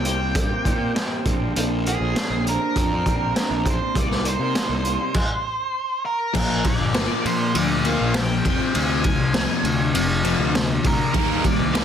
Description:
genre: quiet-loud alternative rock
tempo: 100 BPM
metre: 4/4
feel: straight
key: unclear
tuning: A4 = 440 Hz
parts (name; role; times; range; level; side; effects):
- octave-fuzz lead guitar; melody; 0.0-11.8 s; Ab4 to Ab5; -26 LUFS; right 1 dB; distortion
- electric guitar through a small old amp; arpeggios; 0.0-11.8 s; F2 to G4; -28 LUFS; right 1 dB; analog chorus, digital delay
- fuzz picked electric bass; bass; 0.0-11.8 s; F1 to C3; -26 LUFS; equal; overdrive
- raw garage drum kit; drums; 0.0-11.8 s; crash cymbal, hi-hat, kick drum, ride cymbal, snare drum; -23 LUFS; equal; none
- sludgy distorted guitar; riff; 6.3-11.8 s; F2 to Eb4; -24 LUFS; left 11 dB; overdrive
- overdriven electric guitar; riff; 11.1-11.8 s; Eb3 to Bb3; -25 LUFS; right 11 dB; none
room: light reverb, small room ambience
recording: dense, heavily limited modern master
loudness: -19 LUFS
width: side -8 dB against mid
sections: 0.0-6.4 A section; 6.4-11.8 B section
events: none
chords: 0.0 Cm7; 1.3 Bbadd9; 4.0 Cm7; 6.4 Bb; 8.4 Fm; 11.1 Eb

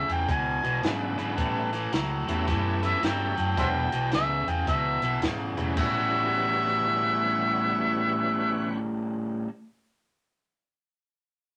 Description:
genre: electric blues shuffle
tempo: 109 BPM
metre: 4/4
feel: swing 64% on 8ths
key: A mixolydian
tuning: A4 = 445 Hz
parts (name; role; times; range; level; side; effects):
- overdriven harmonica; melody; 0.0-8.7 s; C5 to G#5; -29 LUFS; equal; none
- overdriven electric guitar; riff; 0.0-9.5 s; E2 to F#4; -32 LUFS; equal; none
- fingered electric bass; bass; 0.1-9.4 s; E1 to G2; -35 LUFS; equal; none
- compact cocktail drum kit; drums; 0.1-6.8 s; crash cymbal, hi-hat, kick drum, rim click, snare drum; -34 LUFS; equal; none
- bright tonewheel organ; accompaniment; 0.8-8.8 s; A2 to G4; -35 LUFS; equal; slow rotary speaker, overdrive, chorus vibrato
room: moderate studio reverb, RT60 0.6 s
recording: none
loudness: -27 LUFS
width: mono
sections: 0.0-5.8 A section; 5.8-8.0 B section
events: none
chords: 0.0 E7; 1.4 A7; 3.6 E7; 5.8 A13

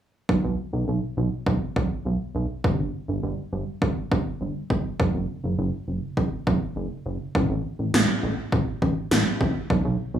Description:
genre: synth-pop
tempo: 102 BPM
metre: 4/4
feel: straight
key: unclear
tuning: A4 = 440 Hz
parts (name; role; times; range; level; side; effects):
- chorused synth bass; bass; 0.3-10.2 s; F#1 to B1; -24 LUFS; right 1 dB; none
- 80s electronic pad drums; drums; 0.3-9.8 s; kick drum, snare drum; -24 LUFS; right 1 dB; overdrive, gated reverb
room: light reverb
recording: small room reverb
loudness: -23 LUFS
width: side -10 dB against mid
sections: 0.3-9.7 A section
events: none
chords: none

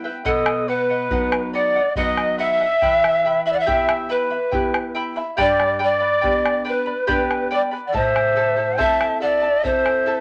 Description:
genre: andean folk, Andean ensemble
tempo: 70 BPM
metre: 3/4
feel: straight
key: unclear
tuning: A4 = 440 Hz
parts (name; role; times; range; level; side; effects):
- charango; accompaniment; 0.0-10.2 s; E4 to B5; -28 LUFS; equal; none
- nylon-string guitar; accompaniment; 0.0-10.2 s; G2 to F#5; -31 LUFS; equal; none
- polished pan flute; melody; 0.3-10.2 s; A4 to E5; -22 LUFS; equal; none
- bright quena; second line; 0.3-10.2 s; B4 to A5; -27 LUFS; equal; none
- bombo; percussion; 0.3-10.1 s; none; -29 LUFS; equal; none
room: moderate small room reverb, RT60 0.5 s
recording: none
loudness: -20 LUFS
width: mono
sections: 0.3-10.2 A section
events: nylon-string guitar fill 0.0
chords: 0.3 B; 2.8 Em; 5.4 G; 7.9 Am

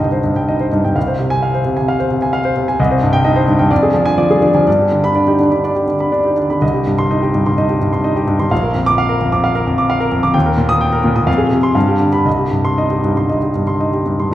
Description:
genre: classical, virtuoso piano study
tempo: 114-134 BPM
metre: 4/4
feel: rubato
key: C minor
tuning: A4 = 440 Hz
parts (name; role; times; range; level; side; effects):
- clear grand piano; solo; 0.0-14.3 s; Bb1 to Eb6; -12 LUFS; equal; none
room: wet recital hall reverb, RT60 1.5 s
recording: heard from further back in the room, nothing above 10.5 kHz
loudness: -12 LUFS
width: side -13 dB against mid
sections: 0.0-14.3 A section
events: none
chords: 0.0 Cm; 1.0 Fm/C; 2.8 Cm; 3.7 Ddim/F; 4.7 G; 6.6 Cm; 8.5 Bb; 10.3 Eb; 11.3 Fm; 11.8 G7; 12.3 Cm

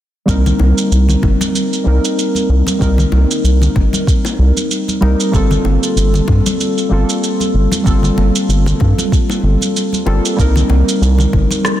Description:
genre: organic downtempo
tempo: 95 BPM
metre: 4/4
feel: swing 55% on 16ths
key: C dorian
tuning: A4 = 439 Hz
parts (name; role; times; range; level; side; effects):
- muted felt-like synth keys; accompaniment; 0.3-11.8 s; G3 to Bb4; -16 LUFS; equal; chorus, sidechain pumping, ping-pong delay
- round analog bass; bass; 0.3-11.5 s; G1 to G2; -12 LUFS; equal; sidechain pumping
- electronic kick drum; drums; 0.3-11.5 s; none; -15 LUFS; equal; none
- electronic shaker and rim click; drums; 0.3-11.8 s; none; -22 LUFS; right 3 dB; soft clipping on snare
- congas and bongos; percussion; 0.5-11.6 s; none; -22 LUFS; left 1 dB; none
room: moderate lush hall reverb, RT60 2.3 s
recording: dense, heavily limited modern master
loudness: -11 LUFS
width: side -12 dB against mid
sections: 0.3-11.8 A section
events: none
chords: 0.3 Cm7; 5.3 Gm11; 10.4 Cm7

